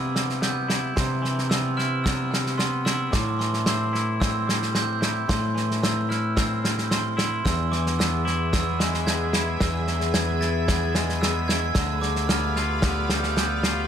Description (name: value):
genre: post-rock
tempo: 111 BPM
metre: 4/4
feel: straight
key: A minor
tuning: A4 = 439 Hz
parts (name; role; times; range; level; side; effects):
- glockenspiel with hard plastic mallets; arpeggios; 0.0-13.9 s; C6 to A6; -29 LUFS; right 6 dB; digital delay
- twangy electric guitar; arpeggios; 0.0-13.9 s; E2 to F4; -30 LUFS; left 3 dB; digital delay
- growling fingered electric bass; bass; 0.0-13.9 s; D2 to C3; -27 LUFS; equal; overdrive
- loose indie drum kit; drums; 0.2-13.8 s; kick drum, snare drum; -26 LUFS; equal; none
- icy glass pad; sustained chords; 7.9-13.9 s; G4 to B5; -32 LUFS; left 2 dB; chorus, built-in reverb
room: light reverb, small room ambience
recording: none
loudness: -21 LUFS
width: side -8 dB against mid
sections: 0.0-13.9 A section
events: none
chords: 0.0 Cmaj7; 3.1 Am7; 7.5 E; 11.8 G7/D